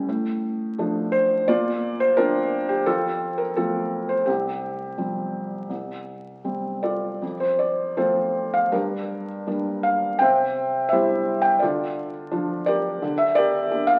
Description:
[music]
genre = classical, lyrical solo piano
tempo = 77-88 BPM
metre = 4/4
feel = rubato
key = F major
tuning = A4 = 444 Hz
[part]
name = felt-muted upright piano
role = solo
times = 0.0-14.0 s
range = C2 to G5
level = -23 LUFS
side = equal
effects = none
[sound]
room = wet recital hall reverb, RT60 1.5 s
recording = very old 78 rpm record, vinyl crackle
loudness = -23 LUFS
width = mono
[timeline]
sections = 0.0-14.0 A section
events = none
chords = 0.1 Dm/A; 1.5 Bbadd9; 2.9 F; 4.3 Csus4; 5.7 C5; 7.2 F; 8.7 Gm; 10.2 C; 11.6 Dm; 13.0 Gm/D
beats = 0.08 0.79 | 1.49 2.18 2.87 3.57 | 4.28 4.98 5.70 6.45 | 7.22 7.98 8.73 9.48 | 10.22 10.93 11.63 12.32 | 13.02 13.72

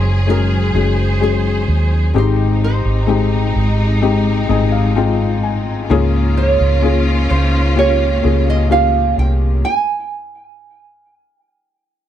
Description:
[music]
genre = pop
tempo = 64 BPM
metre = 4/4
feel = straight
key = unclear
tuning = A4 = 440 Hz
[part]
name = nylon-string guitar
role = melody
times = 0.0-12.1 s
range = Ab4 to Ab5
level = -20 LUFS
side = right 6 dB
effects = none
[part]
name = felt-muted upright piano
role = accompaniment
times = 0.0-9.7 s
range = Ab2 to Ab5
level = -18 LUFS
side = left 8 dB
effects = none
[part]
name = warm symphonic string section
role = sustained chords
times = 0.0-9.6 s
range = Gb3 to C5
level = -23 LUFS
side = right 1 dB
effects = none
[part]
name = vintage muted fingered electric bass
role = bass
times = 0.0-9.6 s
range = Gb1 to Eb2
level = -15 LUFS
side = right 1 dB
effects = none
[sound]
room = little or no reverb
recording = dry, close 1970s-style studio recording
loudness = -13 LUFS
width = side -10 dB against mid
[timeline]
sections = 0.0-12.1 A section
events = felt piano fill 4.0-5.9; stop 9.7-12.1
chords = 0.0 Gbsus2; 2.2 Abmaj7; 5.9 Db6; 9.7 N.C.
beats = 0.28 1.21 | 2.15 3.09 4.03 4.96 | 5.90 6.84 7.78 8.71 | 9.65 10.59 11.53

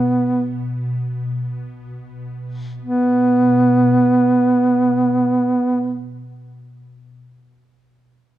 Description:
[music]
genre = caucasian folk, Caucasian lament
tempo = free time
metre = none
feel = none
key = unclear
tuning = A4 = 440 Hz
[part]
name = dark duduk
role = melody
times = 0.0-6.0 s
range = B3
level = -14 LUFS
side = right 1 dB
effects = none
[part]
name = ethereal airy pad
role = drone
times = 0.0-6.0 s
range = B2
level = -26 LUFS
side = left 1 dB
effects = ensemble chorus, built-in reverb, tremolo
[sound]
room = moderate recital hall reverb, RT60 1.5 s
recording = dark, warm production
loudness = -15 LUFS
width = side -14 dB against mid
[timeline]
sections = 0.0-2.8 A section; 2.8-6.5 B section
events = slowing down 0.0-2.8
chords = none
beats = free time

